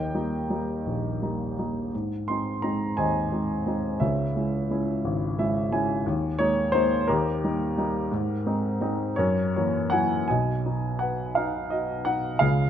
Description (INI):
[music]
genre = classical, lyrical solo piano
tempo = 54-60 BPM (dotted quarters)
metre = 6/8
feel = rubato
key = Ab major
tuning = A4 = 443 Hz
[part]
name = warm baby grand piano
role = solo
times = 0.0-12.7 s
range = Ab1 to C6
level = -24 LUFS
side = equal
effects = none
[sound]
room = light reverb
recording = close, detailed microphones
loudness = -24 LUFS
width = side -9 dB against mid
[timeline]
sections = 0.0-10.3 A section; 10.3-12.7 B section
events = grand piano fill 5.0-6.1, 9.2-10.3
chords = 0.0 Eb; 1.9 Ab; 4.0 Dbm; 6.1 Ebsus4; 7.1 Eb; 8.1 Ab; 9.2 Gb7; 10.3 B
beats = 0.85 | 1.93 2.98 | 4.01 5.05 | 6.07 7.09 | 8.11 9.18 | 10.29 11.37 | 12.41